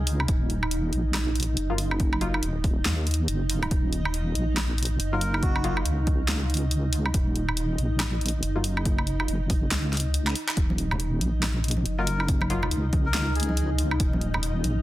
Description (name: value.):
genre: deep dubstep.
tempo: 140 BPM.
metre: 4/4.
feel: swing 60% on 16ths, half-time.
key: Eb minor.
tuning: A4 = 440 Hz.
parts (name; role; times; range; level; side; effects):
granular cloud pad; sustained chords; 0.0-14.8 s; Eb4; -33 LUFS; right 2 dB; built-in reverb.
deep soft wobble bass; bass; 0.0-14.8 s; Eb1 to Eb2; -26 LUFS; equal; chorus.
deep house drum kit; drums; 0.1-14.7 s; handclaps, hi-hat, snare drum, woodblock; -29 LUFS; right 1 dB; none.
electronic kick drum; drums; 0.3-14.1 s; none; -26 LUFS; equal; none.
filtered dub chord stab; stabs; 1.7-2.4, 5.1-5.8, 8.6, 12.0-12.7 s; Gb3 to F4; -35 LUFS; left 3 dB; lush chorus, dub echo.
melodica; melody; 5.1-5.8, 12.0-13.7 s; Gb4 to Bb4; -35 LUFS; left 2 dB; dub echo.
congas; percussion; 10.7-14.7 s; none; -33 LUFS; right 1 dB; none.
room: digital ambience.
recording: dense, heavily limited modern master.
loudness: -23 LUFS.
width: side -15 dB against mid.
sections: 0.0-14.8 A section.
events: drum fill 10.2-10.6.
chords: 0.0 Ebm.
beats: | 0.28 0.71 1.14 1.57 | 2.00 2.43 2.86 3.28 | 3.71 4.14 4.57 5.00 | 5.43 5.86 6.28 6.71 | 7.14 7.57 8.00 8.43 | 8.86 9.28 9.71 10.14 | 10.57 11.00 11.43 11.86 | 12.28 12.71 13.14 13.57 | 14.00 14.43.